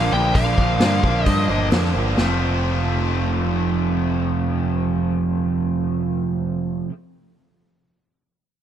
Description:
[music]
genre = classic rock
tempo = 132 BPM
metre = 4/4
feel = straight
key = F major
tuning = A4 = 440 Hz
[part]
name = fuzz lead guitar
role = melody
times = 0.0-1.7 s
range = F5 to G5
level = -23 LUFS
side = left 1 dB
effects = distortion, slapback echo
[part]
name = picked twelve-string acoustic guitar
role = accompaniment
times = 0.0-7.0 s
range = Bb2 to C5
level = -34 LUFS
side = right 7 dB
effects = none
[part]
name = overdriven electric guitar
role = riff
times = 0.0-6.9 s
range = F2 to D4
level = -23 LUFS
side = right 8 dB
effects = none
[part]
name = raw garage guitar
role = riff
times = 0.0-6.9 s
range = F2 to D4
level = -25 LUFS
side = left 6 dB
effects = overdrive
[part]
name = growling picked electric bass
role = bass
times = 0.0-6.8 s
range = F1 to G2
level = -23 LUFS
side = left 1 dB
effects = overdrive
[part]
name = vintage drum kit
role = drums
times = 0.3-2.3 s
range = hi-hat, kick drum, snare drum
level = -22 LUFS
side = equal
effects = none
[sound]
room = light reverb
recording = lossy compression artefacts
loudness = -18 LUFS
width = side -9 dB against mid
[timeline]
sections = 0.0-2.2 A section; 2.2-5.8 B section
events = none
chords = 0.0 Bbadd9; 2.2 Fadd9

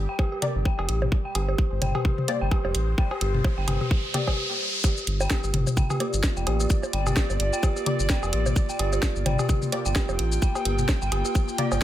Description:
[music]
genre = minimal techno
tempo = 129 BPM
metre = 4/4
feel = swing 57% on 16ths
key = G minor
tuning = A4 = 440 Hz
[part]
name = round analog bass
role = bass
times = 0.0-11.8 s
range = F1 to A1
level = -26 LUFS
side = equal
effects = sidechain pumping
[part]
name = bubbling stepped-filter texture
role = texture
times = 0.0-4.4 s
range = G3 to C5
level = -38 LUFS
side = left 3 dB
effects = chorus, built-in reverb, sidechain pumping
[part]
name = dark detuned synth bell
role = riff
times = 0.1-11.6 s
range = G4 to G5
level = -32 LUFS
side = equal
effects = chorus, sidechain pumping, tape echo
[part]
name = electronic kick drum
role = drums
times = 0.2-11.5 s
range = none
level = -23 LUFS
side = equal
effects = overdrive, small room ambience
[part]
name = electronic cowbell, bongos and toms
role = percussion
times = 0.2-11.8 s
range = none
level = -30 LUFS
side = left 2 dB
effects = small room ambience
[part]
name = filtered dub chord stab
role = stabs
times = 0.4-11.7 s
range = Bb3 to D5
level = -33 LUFS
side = left 2 dB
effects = ensemble chorus, dub echo
[part]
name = garage drum kit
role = drums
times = 0.4-11.8 s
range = hi-hat, shaker, snare drum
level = -30 LUFS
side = equal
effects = overdrive, small room ambience
[part]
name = riser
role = sound effects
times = 2.9-4.8 s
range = none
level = -32 LUFS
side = equal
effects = none
[part]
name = airy breathy pad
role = texture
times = 5.3-11.8 s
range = Bb3 to G5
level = -31 LUFS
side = right 2 dB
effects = chorus, sidechain pumping
[sound]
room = little or no reverb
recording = none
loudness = -22 LUFS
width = side -12 dB against mid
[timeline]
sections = 0.0-4.8 A section; 4.8-11.8 B section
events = riser 2.9-4.8; stop 4.4-4.8; drop 4.8-11.8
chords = 0.0 N.C.; 4.8 Gm

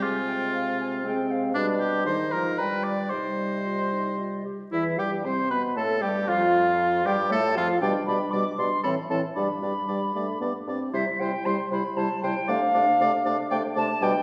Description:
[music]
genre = quick classical-period movement for wind quintet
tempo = 116 BPM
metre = 3/4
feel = straight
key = C minor, C major from 4.7 s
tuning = A4 = 442 Hz
[part]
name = silver concert flute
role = melody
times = 0.0-14.2 s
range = D5 to D6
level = -30 LUFS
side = equal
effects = none
[part]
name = clear oboe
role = second line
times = 0.0-14.1 s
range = D4 to D5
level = -32 LUFS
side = equal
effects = none
[part]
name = mellow French horn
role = accompaniment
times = 0.0-14.1 s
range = Eb3 to C4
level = -32 LUFS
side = equal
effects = none
[part]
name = warm clarinet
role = accompaniment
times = 0.0-14.1 s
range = C4 to C5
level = -35 LUFS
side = equal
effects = none
[part]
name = mellow bassoon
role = bass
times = 0.0-14.1 s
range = E2 to C3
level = -33 LUFS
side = equal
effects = none
[sound]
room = wet recital hall reverb, RT60 1.5 s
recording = heard from further back in the room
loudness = -26 LUFS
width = mono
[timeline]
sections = 0.0-4.7 A section; 4.7-14.2 A section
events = none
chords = 0.0 Fmadd9/C; 1.6 G/B; 2.1 Ab; 2.6 G7; 3.1 Cm; 4.7 C/E; 6.3 Fadd9; 7.8 G/B; 8.8 Am; 9.4 G; 10.9 C; 12.5 Dm7/C

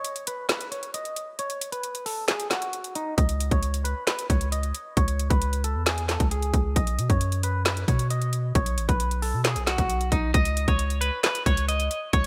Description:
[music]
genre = hip hop, trap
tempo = 134 BPM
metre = 4/4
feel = half-time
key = unclear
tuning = A4 = 441 Hz
[part]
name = clean electric guitar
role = melody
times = 0.0-12.3 s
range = D#4 to D#5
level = -32 LUFS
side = equal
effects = subtle chorus, low-pass filter
[part]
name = trap drum kit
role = drums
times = 0.0-12.3 s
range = handclaps, hi-hat, kick drum, snare drum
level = -27 LUFS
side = equal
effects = none
[part]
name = long sustained 808-style bass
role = bass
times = 3.2-12.3 s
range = A1 to B2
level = -28 LUFS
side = equal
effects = none
[sound]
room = light reverb, digital ambience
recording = bright 1980s-style digital production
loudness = -26 LUFS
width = mono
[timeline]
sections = 0.0-12.3 A section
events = break 0.0-3.2; filter sweep on clean electric guitar 0.0-10.3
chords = 0.0 N.C.; 6.8 B; 10.3 N.C.

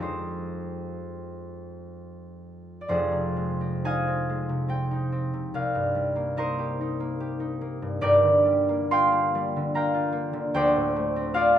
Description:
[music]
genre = classical, solo harp piece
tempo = 60-75 BPM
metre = 3/4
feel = rubato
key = F dorian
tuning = A4 = 441 Hz
[part]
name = concert harp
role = solo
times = 0.0-11.6 s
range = F1 to C6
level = -24 LUFS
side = equal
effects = none
[sound]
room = light reverb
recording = none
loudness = -23 LUFS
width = side -10 dB against mid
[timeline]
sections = 0.0-2.9 A section; 2.9-11.6 B section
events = none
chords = 0.0 Fm9; 2.9 Fm7; 5.6 Cm7; 8.0 Gm7; 10.5 Dm7

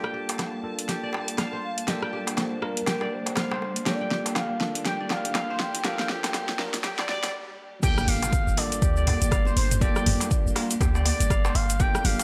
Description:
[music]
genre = afro house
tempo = 121 BPM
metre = 4/4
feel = swing 59% on 16ths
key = G minor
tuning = A4 = 440 Hz
[part]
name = expressive synth lead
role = melody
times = 0.0-12.2 s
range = Bb4 to G5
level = -34 LUFS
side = equal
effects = chorus, cassette tape, analog delay
[part]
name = rich chamber string section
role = sustained chords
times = 0.0-12.2 s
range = G3 to A5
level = -38 LUFS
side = equal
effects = sidechain pumping
[part]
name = kora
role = arpeggios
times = 0.0-12.2 s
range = G4 to G5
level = -38 LUFS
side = equal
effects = sidechain pumping, analog delay
[part]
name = bell-like tine electric piano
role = stabs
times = 0.0-12.2 s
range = Bb3 to Bb4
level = -38 LUFS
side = equal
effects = sidechain pumping, low-pass filter, analog delay
[part]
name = deep house drum kit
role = drums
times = 0.0-12.2 s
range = crash cymbal, hi-hat, rim click, snare drum, toms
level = -31 LUFS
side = equal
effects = none
[part]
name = riser and impact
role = sound effects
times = 1.8-9.8 s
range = none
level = -41 LUFS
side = equal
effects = none
[part]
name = darbuka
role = percussion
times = 0.3-12.2 s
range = none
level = -37 LUFS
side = equal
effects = none
[part]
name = electronic kick drum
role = drums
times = 7.8-11.9 s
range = none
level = -27 LUFS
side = equal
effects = overdrive
[part]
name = congas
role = percussion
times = 7.8-12.2 s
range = none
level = -38 LUFS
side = equal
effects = none
[part]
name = tube shaker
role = percussion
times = 7.8-12.2 s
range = none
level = -38 LUFS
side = equal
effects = none
[part]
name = warm 808-style bass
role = bass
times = 8.1-12.1 s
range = G1 to D2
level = -28 LUFS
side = equal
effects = sidechain pumping
[sound]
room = light reverb, studio ambience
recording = dry, gritty hardware recording, transformer saturation, high-pass filter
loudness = -26 LUFS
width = mono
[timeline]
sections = 0.0-7.8 A section; 7.8-12.2 B section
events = build-up 0.0-7.8; drum fill 0.0-7.3; filter sweep on tine electric piano 0.0-7.8; filter sweep on analog synth lead 0.0-7.8; break 7.3-7.8; drop 7.8-12.2; impact 7.8-9.8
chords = 0.0 Gm9

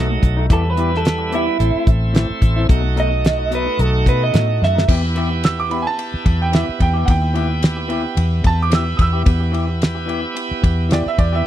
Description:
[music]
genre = straight-eighth soul blues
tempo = 110 BPM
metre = 4/4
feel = swing 56% on 16ths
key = E harmonic minor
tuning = A4 = 442 Hz
[part]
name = electric guitar through a small old amp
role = melody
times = 0.0-4.9 s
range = B3 to E5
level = -20 LUFS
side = right 3 dB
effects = slapback echo
[part]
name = bright tonewheel organ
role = accompaniment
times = 0.0-11.5 s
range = F#3 to G4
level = -25 LUFS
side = right 4 dB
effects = slow rotary speaker, overdrive
[part]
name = electric guitar through a small old amp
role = stabs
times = 0.0-11.5 s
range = A2 to G4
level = -26 LUFS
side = left 6 dB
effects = none
[part]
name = vintage muted fingered electric bass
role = bass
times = 0.0-11.4 s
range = A1 to B2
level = -18 LUFS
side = equal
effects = none
[part]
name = damped 70s drum kit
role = drums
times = 0.2-11.3 s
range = crash cymbal, hi-hat, kick drum, ride cymbal, snare drum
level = -16 LUFS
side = equal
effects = none
[part]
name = bright upright piano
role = second line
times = 5.4-11.5 s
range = D5 to E6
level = -23 LUFS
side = right 6 dB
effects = none
[sound]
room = little or no reverb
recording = dry, close 1970s-style studio recording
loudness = -15 LUFS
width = side -12 dB against mid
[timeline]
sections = 0.0-4.9 A section; 4.9-11.5 A section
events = clean electric guitar solo 0.0-4.9; drum fill 4.6; upright piano solo 4.9-11.5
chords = 0.0 B7; 0.5 Em; 1.6 Am; 2.7 B7; 4.9 Em

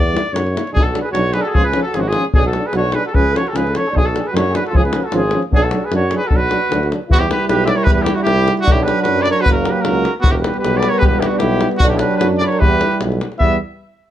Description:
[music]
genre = balkan folk, Balkan brass band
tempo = 152 BPM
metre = 2/4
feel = straight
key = B dorian sharp4, E dorian sharp4 from 7.1 s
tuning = A4 = 440 Hz
[part]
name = clear trumpet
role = melody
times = 0.0-13.6 s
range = F#4 to E5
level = -19 LUFS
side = right 1 dB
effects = plate reverb
[part]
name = warm tuba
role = bass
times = 0.0-13.6 s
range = E1 to F#2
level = -21 LUFS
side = equal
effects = none
[part]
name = clear trombone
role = accompaniment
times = 0.1-13.6 s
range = A#3 to E4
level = -24 LUFS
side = left 3 dB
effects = none
[part]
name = warm euphonium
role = accompaniment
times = 0.1-13.6 s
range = E#3 to A#3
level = -24 LUFS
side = right 6 dB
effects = none
[part]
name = davul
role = percussion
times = 0.1-13.6 s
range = none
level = -18 LUFS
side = left 1 dB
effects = none
[part]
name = warm flugelhorn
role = second line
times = 0.7-13.6 s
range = B3 to C#5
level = -24 LUFS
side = right 2 dB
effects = none
[sound]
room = light reverb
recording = dark, warm production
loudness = -13 LUFS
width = side -12 dB against mid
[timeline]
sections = 0.7-7.1 A section; 7.1-13.4 B section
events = none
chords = 0.3 F#7; 0.7 Bm; 1.5 C#; 2.3 Bm; 3.1 C#; 3.9 Bm; 4.7 C#; 5.5 Bm; 7.1 Em; 8.7 Bm; 9.5 F#; 10.2 Em; 11.8 Bm; 12.6 Em

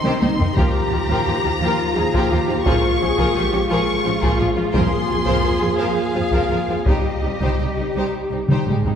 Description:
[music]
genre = cinematic, epic orchestral film score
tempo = 57 BPM (dotted quarters)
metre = 6/8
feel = straight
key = Eb mixolydian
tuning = A4 = 440 Hz
[part]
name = warm symphonic violin section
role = melody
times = 0.0-7.9 s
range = Eb5 to Db6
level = -25 LUFS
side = left 3 dB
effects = none
[part]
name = warm symphonic violin section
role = second line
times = 0.0-8.9 s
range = C4 to C5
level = -27 LUFS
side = left 2 dB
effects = none
[part]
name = warm studio viola section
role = accompaniment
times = 0.0-8.9 s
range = Eb3 to F4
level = -25 LUFS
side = equal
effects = none
[part]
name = mellow French horn section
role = sustained chords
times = 0.0-9.0 s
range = Eb3 to G4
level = -25 LUFS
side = left 2 dB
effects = none
[part]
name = dark symphonic cello section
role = bass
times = 0.0-9.0 s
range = Ab3 to Ab4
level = -25 LUFS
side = right 1 dB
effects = none
[part]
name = dark symphonic double bass section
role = bass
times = 0.0-8.9 s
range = Bb1 to F2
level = -26 LUFS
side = right 2 dB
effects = none
[part]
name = taiko ensemble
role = drums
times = 0.0-9.0 s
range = none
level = -22 LUFS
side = equal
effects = none
[sound]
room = wet concert hall reverb, RT60 2.3 s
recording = heard from further back in the room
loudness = -17 LUFS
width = side -8 dB against mid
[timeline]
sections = 0.0-9.0 A section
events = drum fill 0.0-0.6, 8.5-9.0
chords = 0.0 Cm; 0.6 Ebadd9; 2.6 Bbm7; 4.7 Fsus4; 6.9 Cm

